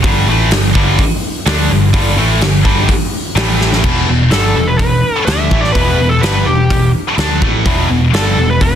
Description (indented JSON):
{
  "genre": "hard rock",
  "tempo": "126 BPM",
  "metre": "4/4",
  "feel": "straight",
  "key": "E minor",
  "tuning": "A4 = 439 Hz",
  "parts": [
    { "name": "picked electric bass", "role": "bass", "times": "0.0-8.8 s", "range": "E1 to D2", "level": "-15 LUFS", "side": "equal", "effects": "none" },
    { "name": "big rock drum kit", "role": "drums", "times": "0.0-8.7 s", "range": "crash cymbal, hi-hat, kick drum, snare drum", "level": "-15 LUFS", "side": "equal", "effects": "none" },
    { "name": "heavy high-gain guitar", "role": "riff", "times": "0.1-8.8 s", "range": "E2 to D4", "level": "-15 LUFS", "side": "equal", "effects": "distortion" },
    { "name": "smooth overdriven lead guitar", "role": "melody", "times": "4.3-8.8 s", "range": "G4 to E5", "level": "-16 LUFS", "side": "equal", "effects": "none" }
  ],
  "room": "small room ambience",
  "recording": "dense, heavily limited modern master",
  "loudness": "-10 LUFS",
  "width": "side -9 dB against mid",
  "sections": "0.0-3.8 A section; 3.8-8.8 B section",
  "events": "drum fill 3.6",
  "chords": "0.0 G5; 3.4 A5; 3.8 Em"
}